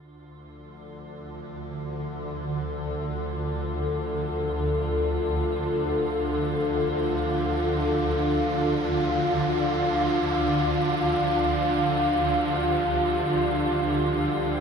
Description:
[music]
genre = dark ambient drone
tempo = free time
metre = none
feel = none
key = D minor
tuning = A4 = 442 Hz
[part]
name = dark analog pad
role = sustained chords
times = 0.0-14.6 s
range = D4 to F5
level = -26 LUFS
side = left 1 dB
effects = chorus
[part]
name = swarming drone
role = drone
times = 0.9-14.6 s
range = D2 to D3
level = -28 LUFS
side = right 1 dB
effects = built-in reverb
[part]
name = icy glass pad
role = texture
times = 0.3-14.6 s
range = F4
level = -37 LUFS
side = right 6 dB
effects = chorus, built-in reverb
[sound]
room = wet huge ambient reverb, RT60 9.4 s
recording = dreamy mix soaked in reverb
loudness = -23 LUFS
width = side -6 dB against mid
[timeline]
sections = 0.0-14.6 A section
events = fade-in on ambient pad 0.0-14.6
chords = 0.0 Dm

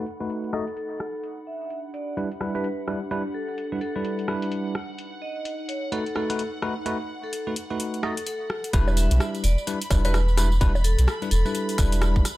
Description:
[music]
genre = UK garage, two-step garage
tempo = 128 BPM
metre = 4/4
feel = swing 61% on 16ths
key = unclear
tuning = A4 = 440 Hz
[part]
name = bright studio violin section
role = sustained chords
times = 0.0-12.4 s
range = F#5 to B5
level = -40 LUFS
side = equal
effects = sidechain pumping
[part]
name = bell-like tine electric piano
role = stabs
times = 0.0-12.2 s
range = G3 to D#5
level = -29 LUFS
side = equal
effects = medium stereo tremolo, vintage 12-bit sampler grit, dub echo
[part]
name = warbly tape-like pad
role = texture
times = 0.0-8.7 s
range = D4 to B5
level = -37 LUFS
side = right 1 dB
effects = chorus, built-in reverb, sidechain pumping
[part]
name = garage drum kit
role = drums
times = 0.1-12.4 s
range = bongos, hi-hat, rim click, tambourine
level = -31 LUFS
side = equal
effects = studio reverb
[part]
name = vibraphone with hard mallets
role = melody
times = 0.5-11.8 s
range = A4 to E5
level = -34 LUFS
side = left 1 dB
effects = dub echo
[part]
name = soft dub sub bass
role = bass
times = 8.7-12.2 s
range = E1 to B1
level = -20 LUFS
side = equal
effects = sidechain pumping
[part]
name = electronic kick drum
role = drums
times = 8.7-12.2 s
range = none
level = -21 LUFS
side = equal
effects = studio reverb
[sound]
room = little or no reverb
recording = low-pass filter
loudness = -23 LUFS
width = side -17 dB against mid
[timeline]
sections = 0.0-8.7 A section; 8.7-12.4 B section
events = filter sweep 0.0-8.7; drop 8.7-12.4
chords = 0.0 B7; 1.2 Em7; 4.8 B7; 8.7 Em7

